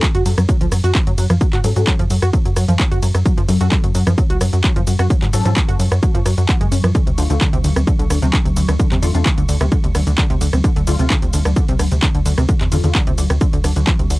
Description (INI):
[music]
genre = driving peak-time techno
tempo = 130 BPM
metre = 4/4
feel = straight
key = F# harmonic minor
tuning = A4 = 440 Hz
[part]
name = tight sequenced synth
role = riff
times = 0.0-14.2 s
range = B#2 to F#4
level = -22 LUFS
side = equal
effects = chorus, sidechain pumping, analog delay
[part]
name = filtered dub chord stab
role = stabs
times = 0.0-13.0 s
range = D3 to A4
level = -26 LUFS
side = left 6 dB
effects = phaser, ensemble chorus, sidechain pumping, analog delay
[part]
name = swarming drone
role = drone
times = 2.2-14.2 s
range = F#3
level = -29 LUFS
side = left 1 dB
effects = built-in reverb, sidechain pumping
[part]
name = electronic kick drum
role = drums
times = 0.0-14.0 s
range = none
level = -16 LUFS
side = equal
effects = overdrive, cassette tape
[part]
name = techno drum kit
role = drums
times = 0.0-14.2 s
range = handclaps, hi-hat, ride cymbal, rim click, shaker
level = -23 LUFS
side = equal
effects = overdrive, cassette tape
[part]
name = tight sequencer bass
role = bass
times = 0.1-14.2 s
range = B#1 to G#2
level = -17 LUFS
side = equal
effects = sidechain pumping
[sound]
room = light reverb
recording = home recording on cassette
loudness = -13 LUFS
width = side -20 dB against mid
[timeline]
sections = 0.0-14.2 A section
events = none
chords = 0.0 F#5; 6.9 Dm